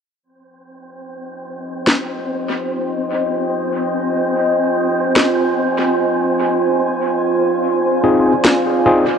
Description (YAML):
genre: ambient dub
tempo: 73 BPM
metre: 4/4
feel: swing 56% on 16ths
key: F dorian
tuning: A4 = 441 Hz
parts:
  - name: deep dark ambient pad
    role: sustained chords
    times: 2.1-9.2 s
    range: F4 to Ab5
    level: -18 LUFS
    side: right 2 dB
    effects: chorus, built-in reverb
  - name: wind-like tuned noise texture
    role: texture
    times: 1.0-9.2 s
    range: C4 to C5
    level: -21 LUFS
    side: left 1 dB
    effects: built-in reverb
  - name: electronic snare drum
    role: drums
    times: 1.9-8.6 s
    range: none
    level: -17 LUFS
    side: left 1 dB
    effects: dub echo
  - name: overdriven tine electric piano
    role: stabs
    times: 8.0-9.0 s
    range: C4 to Ab4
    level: -14 LUFS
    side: left 2 dB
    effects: dub echo
room: light reverb, digital ambience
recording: echo-heavy mix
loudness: -14 LUFS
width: side -7 dB against mid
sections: 0.2-9.2 A section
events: none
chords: 0.2 Fm7